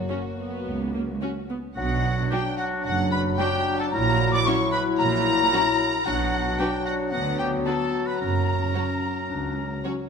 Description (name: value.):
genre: cinematic, playful, whimsical film cue.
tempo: 111 BPM.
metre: 4/4.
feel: straight.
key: B minor.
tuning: A4 = 440 Hz.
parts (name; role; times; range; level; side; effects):
celesta; melody; 0.0-9.8 s; C#5 to D6; -34 LUFS; left 3 dB; none.
dark studio violin section; melody; 0.0-9.8 s; F#4 to D6; -29 LUFS; left 1 dB; none.
mellow French horn section; sustained chords; 0.0-10.1 s; F#3 to E4; -31 LUFS; left 6 dB; none.
warm studio violin section; second line; 0.1-9.9 s; C#4 to C#5; -37 LUFS; left 3 dB; none.
rich studio viola section; accompaniment; 0.1-9.9 s; F#3 to D4; -34 LUFS; right 2 dB; none.
dark studio double bass section; bass; 0.7-9.8 s; F#1 to D2; -31 LUFS; right 5 dB; none.
warm studio cello section; bass; 0.7-9.8 s; C#2 to D3; -31 LUFS; right 4 dB; none.
clear oboe; second line; 1.8-9.8 s; F#4 to D5; -31 LUFS; equal; none.
concert flute; second line; 1.8-9.8 s; F#5 to D6; -34 LUFS; left 2 dB; none.
mellow clarinet; second line; 1.8-10.0 s; B3 to E4; -33 LUFS; left 2 dB; none.
warm bassoon; accompaniment; 1.8-10.1 s; F#3; -31 LUFS; left 1 dB; none.
room: moderate scoring stage reverb, RT60 1.8 s.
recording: none.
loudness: -22 LUFS.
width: side -6 dB against mid.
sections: 0.0-1.8 A section; 1.8-10.1 B section.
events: none.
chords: 0.0 F#; 1.8 Bm; 3.9 F#7/A#; 6.1 Bm; 7.1 Bm/D; 8.2 F#.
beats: 0.10 0.66 1.22 | 1.77 2.32 2.85 3.39 | 3.93 4.46 5.00 5.53 | 6.06 6.59 7.12 7.66 | 8.20 8.74 9.29 9.84.